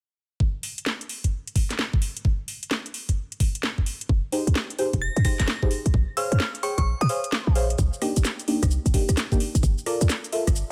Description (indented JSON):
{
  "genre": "UK garage, two-step garage",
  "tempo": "130 BPM",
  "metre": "4/4",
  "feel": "swing 64% on 16ths",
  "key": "C phrygian",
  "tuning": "A4 = 436 Hz",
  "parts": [
    { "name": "electronic kick drum", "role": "drums", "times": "0.4-10.5 s", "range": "none", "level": "-26 LUFS", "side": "equal", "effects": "studio reverb" },
    { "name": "garage drum kit", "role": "drums", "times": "0.6-10.7 s", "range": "hi-hat, rim click, shaker, snare drum", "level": "-31 LUFS", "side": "equal", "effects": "studio reverb" },
    { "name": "short 808-style bass", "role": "bass", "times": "4.1-10.6 s", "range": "F1 to Bb2", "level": "-24 LUFS", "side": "equal", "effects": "none" },
    { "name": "deep mellow chord stab", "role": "stabs", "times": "4.3-10.4 s", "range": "Bb3 to G5", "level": "-31 LUFS", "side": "equal", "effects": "chorus, cassette tape, tape echo" },
    { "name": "glassy synth bell", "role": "melody", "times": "5.0-7.5 s", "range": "Db6 to Bb6", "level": "-33 LUFS", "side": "equal", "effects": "chorus, phaser, tape echo" }
  ],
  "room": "little or no reverb",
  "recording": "none",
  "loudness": "-25 LUFS",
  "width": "mono",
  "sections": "0.4-7.8 A section; 7.8-10.7 B section",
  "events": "kick drops out 6.9-7.8",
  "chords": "0.4 N.C.; 3.9 Fm7; 5.7 Bbm7; 7.8 Cm7; 9.4 Gm7"
}